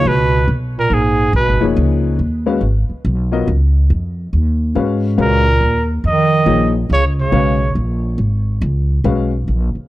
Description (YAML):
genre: modal jazz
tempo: 140 BPM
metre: 4/4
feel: swing 64% on 8ths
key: Db mixolydian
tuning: A4 = 440 Hz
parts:
  - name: breathy trumpet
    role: melody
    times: 0.0-1.7, 5.2-7.7 s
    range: Ab4 to Eb5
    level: -17 LUFS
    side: equal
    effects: slapback echo
  - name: mellow bass clarinet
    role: second line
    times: 0.0-1.7, 5.2-7.7 s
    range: Ab2 to Eb3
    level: -19 LUFS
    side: right 5 dB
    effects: none
  - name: warm grand piano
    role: accompaniment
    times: 0.0-9.3 s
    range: F3 to F5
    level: -18 LUFS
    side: left 5 dB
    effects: none
  - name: upright bass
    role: bass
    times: 0.0-9.8 s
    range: F1 to Ab2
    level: -16 LUFS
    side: equal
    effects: none
room: small room ambience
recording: dry, close 1970s-style studio recording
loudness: -13 LUFS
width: side -16 dB against mid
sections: 0.0-9.9 A section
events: none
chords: 0.0 Db9; 5.2 Bbm7